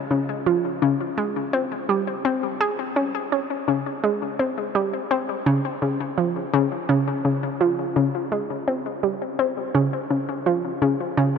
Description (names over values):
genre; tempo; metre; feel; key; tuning
ambient; 84 BPM; 4/4; straight; Db lydian; A4 = 440 Hz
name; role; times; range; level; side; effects
analog pluck; solo; 0.1-11.4 s; Db3 to Ab4; -21 LUFS; equal; chorus, ping-pong delay
room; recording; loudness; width
wet huge ambient reverb, RT60 8.8 s; none; -21 LUFS; side -6 dB against mid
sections
0.0-11.4 A section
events
none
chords
none